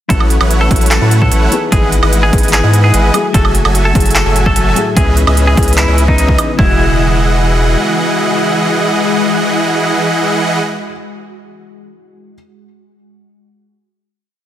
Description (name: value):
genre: future bass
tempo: 148 BPM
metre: 4/4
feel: half-time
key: E major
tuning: A4 = 439 Hz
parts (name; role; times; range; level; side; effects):
- semi-hollow electric guitar; melody; 0.1-10.9 s; D#4 to A4; -18 LUFS; equal; sidechain pumping, tape echo
- felt-muted upright piano; accompaniment; 0.1-12.4 s; E3 to D#5; -20 LUFS; left 4 dB; sidechain pumping, tape echo
- ethereal airy pad; sustained chords; 0.6-10.6 s; A2 to G#5; -23 LUFS; left 2 dB; ensemble chorus, built-in reverb, phaser, sidechain pumping
- supersaw chords; riff; 0.1-10.6 s; E3 to G#5; -15 LUFS; right 1 dB; sidechain pumping, tape echo
- saturated sub bass; bass; 0.1-7.8 s; E1 to A2; -12 LUFS; equal; sidechain pumping
- big-room dance drum kit; drums; 0.1-6.5 s; handclaps, hi-hat, woodblock; -17 LUFS; right 3 dB; overdrive
- electronic kick drum; drums; 0.1-6.7 s; none; -14 LUFS; equal; overdrive
room: light reverb, digital ambience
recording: dense, heavily limited modern master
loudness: -9 LUFS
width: side -12 dB against mid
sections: 0.1-6.6 drop; 6.6-9.8 final chord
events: drop 0.1-6.6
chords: 0.1 A6; 1.5 Emaj7/G#; 3.1 F#m9; 5.0 C#m7; 6.6 Emaj9